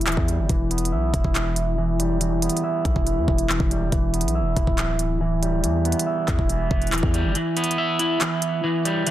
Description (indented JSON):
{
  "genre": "hip hop, drill",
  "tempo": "140 BPM",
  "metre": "4/4",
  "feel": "half-time",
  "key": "E minor",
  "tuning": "A4 = 440 Hz",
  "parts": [
    { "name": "electric guitar at the edge of break-up", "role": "arpeggios", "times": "0.0-9.1 s", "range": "E3 to E5", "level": "-23 LUFS", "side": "right 1 dB", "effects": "low-pass filter, ping-pong delay" },
    { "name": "hard-hitting 808-style bass", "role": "bass", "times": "0.0-7.3 s", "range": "D1 to E2", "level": "-24 LUFS", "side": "equal", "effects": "none" },
    { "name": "drill drum kit", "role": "drums", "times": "0.0-9.1 s", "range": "handclaps, hi-hat, kick drum", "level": "-24 LUFS", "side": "equal", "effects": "none" }
  ],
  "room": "little or no reverb",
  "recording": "dense, heavily limited modern master",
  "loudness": "-20 LUFS",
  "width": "side -13 dB against mid",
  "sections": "0.0-9.1 A section",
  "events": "filter sweep on clean electric guitar 0.0-7.4; kick muted 7.4-9.1",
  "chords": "0.0 Em"
}